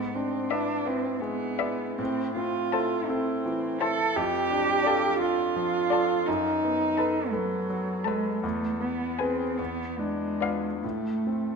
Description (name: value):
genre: classical, slow romantic movement for piano quartet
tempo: 47-58 BPM (dotted quarters)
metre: 6/8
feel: rubato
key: A minor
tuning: A4 = 443 Hz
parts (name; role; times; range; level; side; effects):
- muted cello; second line; 0.0-11.6 s; F#3 to A4; -27 LUFS; right 4 dB; none
- bright concert grand piano; accompaniment; 0.0-11.6 s; E2 to B4; -30 LUFS; left 4 dB; none
- muted violin; melody; 0.5-10.7 s; E5 to A5; -34 LUFS; left 10 dB; none
- muted violin; second line; 0.5-10.7 s; B4 to D5; -35 LUFS; left 4 dB; none
room: moderate recital hall reverb, RT60 1.5 s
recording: minimal, uncompressed stereo recording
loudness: -25 LUFS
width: side -5 dB against mid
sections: 0.0-11.6 A section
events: none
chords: 0.0 E7/G#; 2.0 Am; 4.2 Dm/F; 6.3 B7/F#; 8.4 E; 9.6 E7b9; 10.8 Am